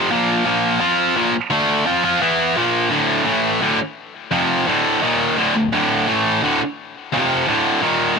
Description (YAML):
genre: metal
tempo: 171 BPM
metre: 4/4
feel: straight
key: D minor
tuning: A4 = 441 Hz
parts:
  - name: tight distorted guitar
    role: solo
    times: 0.0-8.2 s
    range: D2 to F4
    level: -16 LUFS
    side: equal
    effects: distortion
room: little or no reverb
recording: rough home demo mix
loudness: -15 LUFS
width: side -5 dB against mid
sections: 0.0-2.9 A section; 2.9-8.2 B section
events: none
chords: 0.1 Bb5; 0.8 F5; 1.1 Bb5; 1.5 D5; 1.9 F5; 2.2 E5; 2.6 Bb5; 2.9 D5; 3.3 A5; 3.6 D5; 4.3 F5; 4.7 D5; 5.0 Eb5; 5.4 D5; 6.1 A5; 6.4 D5; 7.1 F5; 7.5 D5; 7.8 Eb5